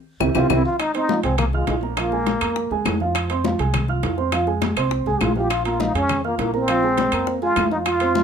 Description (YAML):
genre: Afro-Cuban jazz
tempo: 204 BPM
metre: 4/4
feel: straight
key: unclear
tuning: A4 = 440 Hz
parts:
  - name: dark upright piano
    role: accompaniment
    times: 0.2-8.2 s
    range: F3 to F6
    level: -24 LUFS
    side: right 5 dB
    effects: none
  - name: upright bass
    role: bass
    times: 0.2-8.2 s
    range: Bb1 to F2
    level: -26 LUFS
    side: equal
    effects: none
  - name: bongos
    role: percussion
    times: 0.2-8.2 s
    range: none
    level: -30 LUFS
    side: left 10 dB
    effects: none
  - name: claves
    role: percussion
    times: 0.2-8.0 s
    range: none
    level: -30 LUFS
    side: left 11 dB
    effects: none
  - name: congas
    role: percussion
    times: 0.2-8.2 s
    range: none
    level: -29 LUFS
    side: left 6 dB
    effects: none
  - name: timbales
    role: percussion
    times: 0.2-8.2 s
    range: none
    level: -28 LUFS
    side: right 5 dB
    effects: none
  - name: trombone with plunger mute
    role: melody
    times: 0.4-3.0, 5.1-8.2 s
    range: Ab3 to Ab4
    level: -22 LUFS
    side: left 1 dB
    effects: none
room: light reverb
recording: none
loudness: -18 LUFS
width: side -7 dB against mid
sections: 0.8-8.2 A section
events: drum fill 0.0-0.8; band accent 0.0-0.8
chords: 0.0 C; 0.8 Fm7; 2.0 Bb5; 3.2 Fm; 5.5 Bb7(no3)